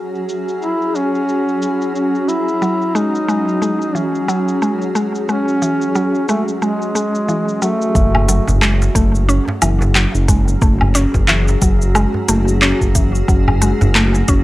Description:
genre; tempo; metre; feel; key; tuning
organic downtempo; 90 BPM; 4/4; swing 58% on 16ths; F# minor; A4 = 442 Hz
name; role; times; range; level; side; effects
granular cloud pad; sustained chords; 0.0-14.4 s; F#3 to G#4; -22 LUFS; left 1 dB; built-in reverb, sidechain pumping
organic electronic drum kit; drums; 0.2-14.4 s; cabasa, handclaps, hi-hat, woodblock; -19 LUFS; left 1 dB; low-pass filter on perc, low-pass filter on hats, low-pass filter on snare, low-pass filter on room
mellow duduk; melody; 0.6-8.6 s; G#3 to E4; -19 LUFS; equal; tape echo
mallet-like synth pluck; arpeggios; 2.6-14.4 s; E3 to C#4; -20 LUFS; equal; chorus, analog delay
smooth synth bass; bass; 8.0-14.4 s; F#1; -15 LUFS; equal; none
electronic kick drum; drums; 8.0-14.4 s; none; -16 LUFS; equal; none
djembe; percussion; 8.1-14.3 s; none; -21 LUFS; right 1 dB; none
room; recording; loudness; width
digital ambience; dry, gritty hardware recording, cassette tape; -13 LUFS; side -17 dB against mid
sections
0.0-8.0 A section; 8.0-14.4 B section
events
none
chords
0.0 F#7sus2; 8.0 F#m9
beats
0.62 1.29 1.95 | 2.62 3.29 3.95 4.62 | 5.29 5.95 6.62 7.29 | 7.95 8.62 9.29 9.95 | 10.62 11.29 11.95 12.62 | 13.29 13.95

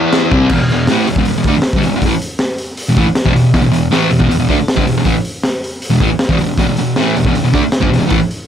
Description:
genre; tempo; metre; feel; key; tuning
garage rock duo or trio; 158 BPM; 4/4; straight; unclear; A4 = 440 Hz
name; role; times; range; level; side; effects
fuzz guitar; riff; 0.0-8.2 s; E2 to E4; -12 LUFS; equal; distortion
crunchy breakbeat drum kit; drums; 0.1-8.4 s; crash cymbal, hi-hat, kick drum, snare drum; -16 LUFS; equal; none
room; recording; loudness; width
light reverb; none; -11 LUFS; side -9 dB against mid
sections
0.5-8.5 A section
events
none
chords
0.3 C5; 0.5 E5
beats
0.13 | 0.51 0.88 1.26 1.64 | 2.02 2.39 2.77 3.15 | 3.53 3.91 4.29 4.67 | 5.05 5.43 5.81 6.19 | 6.57 6.96 7.34 7.72 | 8.10

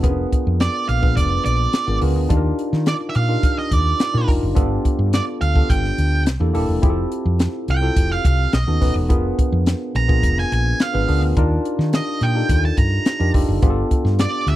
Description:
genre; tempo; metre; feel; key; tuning
polished 1980s jazz-funk pop; 106 BPM; 4/4; straight; unclear; A4 = 440 Hz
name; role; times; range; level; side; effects
tine electric piano; accompaniment; 0.0-14.6 s; Bb3 to Cb5; -23 LUFS; left 1 dB; overdrive, wide subtle chorus
woody fretless electric bass; bass; 0.0-14.6 s; Eb1 to Eb3; -19 LUFS; equal; none
crisp fusion drum kit; drums; 0.0-14.6 s; hi-hat, kick drum, snare drum; -19 LUFS; equal; none
octave-fuzz lead guitar; melody; 0.6-14.6 s; D5 to Bb5; -23 LUFS; right 4 dB; distortion, slapback echo
room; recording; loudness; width
little or no reverb; dry, close 1970s-style studio recording; -16 LUFS; side -14 dB against mid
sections
0.0-14.6 A section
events
none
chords
0.0 Bb7b9/F; 2.3 Ebmaj9; 4.6 G7; 6.3 C13; 6.8 Fmaj9; 8.5 B9; 9.1 Bb7b9/F; 11.4 Ebmaj9; 13.6 G7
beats
| 0.04 0.60 1.17 1.74 | 2.30 2.87 3.44 4.00 | 4.57 5.13 5.70 6.27 | 6.83 7.40 7.97 8.53 | 9.10 9.66 10.23 10.80 | 11.36 11.93 12.49 13.06 | 13.62 14.19

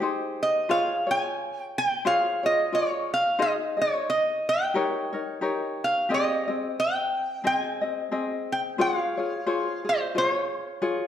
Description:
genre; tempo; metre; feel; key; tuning
Hawaiian; 89 BPM; 4/4; swing 57% on 8ths; Ab major; A4 = 440 Hz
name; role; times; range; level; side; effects
tenor ukulele; accompaniment; 0.0-11.1 s; C4 to Eb5; -28 LUFS; left 3 dB; none
lap resonator guitar; melody; 0.4-11.1 s; C5 to Ab5; -25 LUFS; right 1 dB; none
room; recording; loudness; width
wet recital hall reverb, RT60 1.5 s; dark, warm production; -23 LUFS; side -10 dB against mid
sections
0.0-8.8 A section; 8.8-11.1 B section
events
none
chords
0.0 Abmaj7; 0.7 Dbmaj7; 3.4 Ab/Eb; 4.8 Eb7; 6.1 Abmaj7; 8.8 Dbmaj7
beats
0.02 | 0.70 1.37 2.05 2.73 | 3.40 4.08 4.75 5.42 | 6.10 6.78 7.45 8.12 | 8.80 9.47 10.15 10.82

